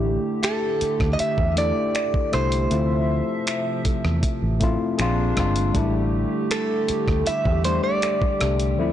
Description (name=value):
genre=contemporary R&B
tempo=79 BPM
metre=4/4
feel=straight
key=unclear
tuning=A4 = 440 Hz
part: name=tine electric piano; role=accompaniment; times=0.0-8.9 s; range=D2 to A4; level=-26 LUFS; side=left 5 dB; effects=none
part: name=hollow soft pad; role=sustained chords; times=0.0-8.9 s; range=D2 to E5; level=-29 LUFS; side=right 2 dB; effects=chorus
part: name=vintage muted fingered electric bass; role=bass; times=0.0-8.7 s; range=G1 to E2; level=-24 LUFS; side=right 1 dB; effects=none
part: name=direct-recorded clean electric guitar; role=melody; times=0.4-8.9 s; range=A4 to E5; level=-24 LUFS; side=right 2 dB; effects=ping-pong delay
part: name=dusty soul sampler-style drum kit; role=drums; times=0.4-8.8 s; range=finger snaps, hi-hat, kick drum, rim click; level=-26 LUFS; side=equal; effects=soft clipping on snare
part: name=glassy wavetable pluck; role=texture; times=0.4-8.9 s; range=E4 to E5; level=-40 LUFS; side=right 2 dB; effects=none
room=digital ambience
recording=blown-out, overdriven recording, overdrive, nothing above 10.9 kHz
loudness=-20 LUFS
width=side -11 dB against mid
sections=0.0-8.9 A section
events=none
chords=0.0 A7sus4; 2.7 Dm9; 5.0 Bb9; 5.7 A7sus4